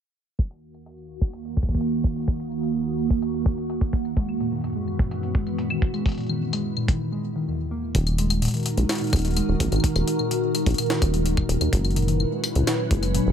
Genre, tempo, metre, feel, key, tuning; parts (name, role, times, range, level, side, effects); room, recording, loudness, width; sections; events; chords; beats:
IDM; 127 BPM; 4/4; straight; Eb phrygian; A4 = 440 Hz
glassy FM pad; sustained chords; 1.2-13.3 s; Eb2 to Cb5; -26 LUFS; right 1 dB; ensemble chorus, built-in reverb, phaser, vintage 12-bit sampler grit, sidechain pumping
electronic kick drum; drums; 0.4-13.0 s; -22 LUFS; equal
jungle sampler-style drum kit; drums; 0.4-13.2 s; claves, hi-hat, snare drum; -29 LUFS; left 2 dB
harp-like synth pluck; arpeggios; 4.2-13.3 s; Eb2 to Bb3; -28 LUFS; left 1 dB; chorus, cassette tape, ping-pong delay
deep acid bass; bass; 7.9-13.3 s; Eb1 to Eb2; -23 LUFS; equal; tube saturation
light reverb; low-pass filter; -22 LUFS; side -8 dB against mid
0.4-7.9 A section; 7.9-13.3 B section
filter sweep on ambient pad 0.4-7.9; filter sweep 0.4-7.9; break 7.0-7.9
0.4 Ebm; 4.2 Gb7sus4; 7.9 Ebm; 11.7 Gb7sus4
| 0.39 0.86 1.33 1.81 | 2.28 2.75 3.22 3.70 | 4.17 4.64 5.11 5.59 | 6.06 6.53 7.00 7.47 | 7.95 8.42 8.89 9.37 | 9.84 10.31 10.78 11.26 | 11.73 12.20 12.67 13.14